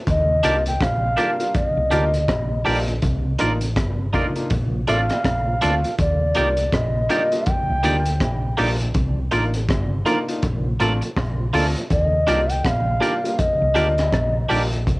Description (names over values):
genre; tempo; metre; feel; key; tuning
lovers rock reggae; 81 BPM; 4/4; swing 60% on 16ths; unclear; A4 = 439 Hz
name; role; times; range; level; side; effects
mellow bansuri; melody; 0.1-14.5 s; D5 to G5; -22 LUFS; equal; cassette tape, tape echo
hollow-body short-scale fingered electric bass; bass; 0.1-15.0 s; G1 to Eb2; -23 LUFS; equal; none
crunchy breakbeat drum kit; drums; 0.1-15.0 s; hi-hat, kick drum, rim click; -24 LUFS; equal; cassette tape
mellow tonewheel organ; accompaniment; 0.3-14.8 s; Eb2 to D4; -32 LUFS; right 2 dB; overdrive, chorus vibrato, slow rotary speaker, tape echo
warm grand piano; accompaniment; 0.4-14.8 s; G3 to F4; -26 LUFS; left 1 dB; plate reverb
twangy electric guitar; stabs; 0.4-14.6 s; Bb3 to D5; -22 LUFS; right 2 dB; none
room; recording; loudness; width
moderate booth ambience, RT60 0.3 s; home recording on cassette; -18 LUFS; side -22 dB against mid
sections
0.0-15.0 A section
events
none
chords
0.1 Ebmaj7; 3.0 Cm11; 4.5 Bbmaj7; 6.0 Ebmaj7; 8.9 Cm11; 10.4 Bbmaj7; 11.9 Ebmaj7